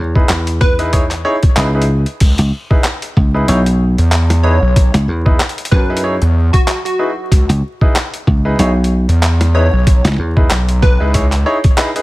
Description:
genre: glitch hop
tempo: 94 BPM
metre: 4/4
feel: swing 56% on 16ths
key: C# minor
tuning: A4 = 440 Hz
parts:
  - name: dry thumbed slap bass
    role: bass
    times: 0.0-10.5 s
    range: B1 to F#2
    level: -14 LUFS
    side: equal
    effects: none
  - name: clear concert grand piano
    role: stabs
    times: 0.2-12.0 s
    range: D#4 to C#5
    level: -19 LUFS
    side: equal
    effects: sidechain pumping, ping-pong delay
  - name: electronic kick drum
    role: drums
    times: 0.2-11.8 s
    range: none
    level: -12 LUFS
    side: equal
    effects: studio reverb
  - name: boom bap sampler-style drum kit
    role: drums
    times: 0.3-12.0 s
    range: crash cymbal, handclaps, hi-hat, snare drum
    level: -19 LUFS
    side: equal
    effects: studio reverb
  - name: plucky unison lead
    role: melody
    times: 0.6-11.0 s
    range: F#4 to C#5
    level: -21 LUFS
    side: equal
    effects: vintage 12-bit sampler grit, ping-pong delay
  - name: gritty driven synth bass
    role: bass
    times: 2.2-11.4 s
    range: B1 to E2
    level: -12 LUFS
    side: equal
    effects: none
room: little or no reverb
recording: vinyl crackle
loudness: -11 LUFS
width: side -19 dB against mid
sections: 0.0-12.0 A section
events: none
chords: 0.0 C#m9

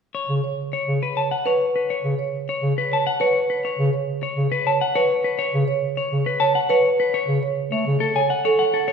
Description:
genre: classical, minimalist pattern music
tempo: 103 BPM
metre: 3/4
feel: straight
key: unclear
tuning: A4 = 440 Hz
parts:
  - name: clean electric guitar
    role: melody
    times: 0.1-8.9 s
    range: A4 to A5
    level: -23 LUFS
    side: left 4 dB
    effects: none
  - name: warm bass clarinet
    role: accompaniment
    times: 0.3-8.0 s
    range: C#3 to A3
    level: -24 LUFS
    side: right 1 dB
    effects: none
  - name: marimba with soft mallets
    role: arpeggios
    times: 0.4-8.6 s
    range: A4 to C#5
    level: -22 LUFS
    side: right 3 dB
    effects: none
room: wet recital hall reverb, RT60 1.5 s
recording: recorded in a church or concert hall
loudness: -19 LUFS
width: side -6 dB against mid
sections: 0.1-8.9 A section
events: none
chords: 0.1 C#7(no3); 7.1 F#m

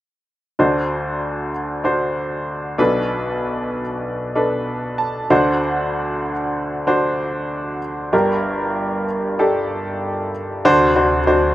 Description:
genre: pop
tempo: 96 BPM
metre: 4/4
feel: swing 56% on 16ths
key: D mixolydian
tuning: A4 = 440 Hz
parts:
  - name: bright upright piano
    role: accompaniment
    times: 0.6-11.5 s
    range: G1 to A5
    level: -17 LUFS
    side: equal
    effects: none
  - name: chorused pulse-width pad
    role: sustained chords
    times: 10.6-11.5 s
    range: D2 to F#4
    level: -21 LUFS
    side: left 2 dB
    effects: none
room: light reverb, small room reverb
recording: rough home demo mix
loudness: -18 LUFS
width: side -14 dB against mid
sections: 0.6-10.6 A section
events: upright piano fill 4.7-5.6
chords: 0.6 D7; 2.8 Bm7; 5.3 D7; 8.1 Gm; 10.6 D7

